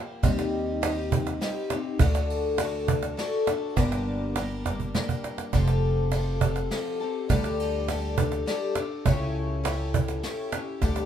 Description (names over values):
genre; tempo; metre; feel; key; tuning
acoustic folk duo or small band; 102 BPM; 3/4; straight; unclear; A4 = 440 Hz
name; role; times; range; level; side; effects
picked twelve-string acoustic guitar; accompaniment; 0.0-11.1 s; G2 to Bb4; -29 LUFS; left 3 dB; none
upright bass; bass; 0.2-11.1 s; F1 to Eb2; -28 LUFS; equal; none
soft brush drum kit; drums; 0.2-11.0 s; kick drum, ride cymbal, snare drum; -32 LUFS; equal; none
cajon; percussion; 0.2-11.1 s; none; -27 LUFS; right 4 dB; none
room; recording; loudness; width
moderate small room reverb, RT60 0.5 s; minimal, uncompressed stereo recording; -24 LUFS; side -9 dB against mid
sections
0.0-5.5 A section; 5.5-11.1 A section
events
drum fill 4.8-5.5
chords
0.2 Cm/Eb; 2.0 D; 3.8 Gm; 5.5 Fadd9; 7.3 Dsus4; 9.1 A7/C#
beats
| 0.24 0.83 1.42 | 2.00 2.59 3.18 | 3.77 4.36 4.95 | 5.54 6.12 6.71 | 7.30 7.89 8.47 | 9.06 9.65 10.24 | 10.82